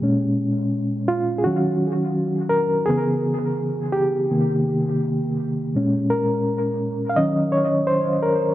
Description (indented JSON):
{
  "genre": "hip hop",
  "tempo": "84 BPM",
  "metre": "4/4",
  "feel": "swing 59% on 16ths",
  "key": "unclear",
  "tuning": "A4 = 440 Hz",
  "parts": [
    { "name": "bright reed electric piano", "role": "solo", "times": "0.0-8.5 s", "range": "Bb2 to F5", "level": "-19 LUFS", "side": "equal", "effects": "fast tremolo, cassette tape, low-pass filter, dub echo" }
  ],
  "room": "light reverb",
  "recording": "echo-heavy mix, nothing above 10.3 kHz",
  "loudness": "-19 LUFS",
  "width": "side -14 dB against mid",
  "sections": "0.0-8.5 A section",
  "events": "reed electric piano solo 0.0-8.5",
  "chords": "0.0 Bbm7; 1.5 Ebm7; 2.9 Dbm7; 4.3 Cm7; 5.7 Bbm7; 7.2 Ebm7"
}